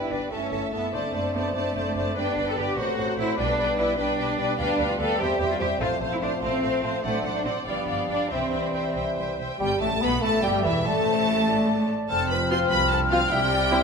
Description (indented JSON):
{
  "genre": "quick classical-period movement for symphony orchestra",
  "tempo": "98 BPM (dotted quarters)",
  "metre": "6/8",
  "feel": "rubato",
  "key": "G major, C major from 4.6 s",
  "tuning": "A4 = 440 Hz",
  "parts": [
    { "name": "rich studio violin section", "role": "melody", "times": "0.0-13.8 s", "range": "D5 to C6", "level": "-31 LUFS", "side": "left 2 dB", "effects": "none" },
    { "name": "dark clarinet", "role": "second line", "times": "0.0-13.8 s", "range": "A4 to E5", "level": "-34 LUFS", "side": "left 1 dB", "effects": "none" },
    { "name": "mellow hollow concert flute", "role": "second line", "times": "0.0-13.8 s", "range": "C5 to F6", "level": "-32 LUFS", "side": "left 2 dB", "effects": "none" },
    { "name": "warm studio violin section", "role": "second line", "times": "0.0-13.8 s", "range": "E4 to F5", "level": "-33 LUFS", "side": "left 2 dB", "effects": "none" },
    { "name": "rich studio viola section", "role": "accompaniment", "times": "0.0-13.8 s", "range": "E3 to D5", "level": "-31 LUFS", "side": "right 1 dB", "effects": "none" },
    { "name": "warm bassoon", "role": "accompaniment", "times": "0.0-13.8 s", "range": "E3 to C4", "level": "-32 LUFS", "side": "right 3 dB", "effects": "none" },
    { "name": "mellow French horn section", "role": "sustained chords", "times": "0.0-13.8 s", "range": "E3 to E4", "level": "-30 LUFS", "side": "left 4 dB", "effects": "none" },
    { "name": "rich studio cello section", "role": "bass", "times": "0.0-13.8 s", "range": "C2 to A4", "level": "-30 LUFS", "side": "right 2 dB", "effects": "none" },
    { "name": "rich studio double bass section", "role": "bass", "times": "0.1-13.8 s", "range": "E1 to E2", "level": "-33 LUFS", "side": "right 2 dB", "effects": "none" }
  ],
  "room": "wet recital hall reverb, RT60 1.7 s",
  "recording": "minimal, uncompressed stereo recording",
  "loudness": "-22 LUFS",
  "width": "side -5 dB against mid",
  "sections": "0.0-9.6 A section; 9.6-13.8 B section",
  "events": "none",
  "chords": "0.3 A7/G; 0.9 D7/F#; 2.2 G; 2.8 F#dim; 3.4 G/B; 4.6 G7/D; 5.2 C/E; 5.8 F/A; 7.0 D7; 7.7 G7; 8.3 C; 9.6 Emadd11; 10.9 Asus4; 12.1 F5; 13.3 C"
}